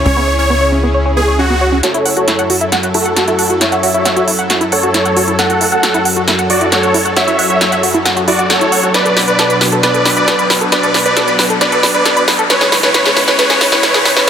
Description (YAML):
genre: uplifting trance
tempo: 135 BPM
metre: 4/4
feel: straight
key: F# minor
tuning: A4 = 440 Hz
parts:
  - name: supersaw pad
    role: sustained chords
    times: 0.0-14.3 s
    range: F#2 to C#5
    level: -19 LUFS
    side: equal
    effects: vintage 12-bit sampler grit
  - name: tight sequencer bass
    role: bass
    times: 0.0-1.8 s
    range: C#2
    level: -15 LUFS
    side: left 1 dB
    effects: none
  - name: supersaw chords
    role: melody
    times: 0.1-14.3 s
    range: F#4 to F#5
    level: -14 LUFS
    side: equal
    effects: low-pass filter, dub echo
  - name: tight sequenced synth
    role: arpeggios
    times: 0.1-14.2 s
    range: B3 to B5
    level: -17 LUFS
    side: right 1 dB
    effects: chorus, tape echo
  - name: big-room dance drum kit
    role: drums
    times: 1.8-14.3 s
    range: hi-hat, snare drum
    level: -14 LUFS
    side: equal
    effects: high-pass filter on snare, high-pass filter on hats, high-pass filter on room
  - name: riser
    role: sound effects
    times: 5.7-14.3 s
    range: none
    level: -22 LUFS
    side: left 1 dB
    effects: none
room: light reverb, digital ambience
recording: dense, heavily limited modern master, high-pass filter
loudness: -10 LUFS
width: side -8 dB against mid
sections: 0.0-1.8 A section; 1.8-14.3 B section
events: build-up 1.8-14.3; drum fill 1.8-14.3; filter sweep on supersaw synth 1.8-14.3; riser 5.7-14.3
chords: 0.0 C#m; 1.8 F#m7; 8.9 Bm; 12.5 C#m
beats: | 0.06 0.50 0.94 1.39 | 1.83 2.28 2.72 3.17 | 3.61 4.05 4.50 4.94 | 5.39 5.83 6.28 6.72 | 7.17 7.61 8.05 8.50 | 8.94 9.39 9.83 10.28 | 10.72 11.17 11.61 12.05 | 12.50 12.94 13.39 13.83 | 14.28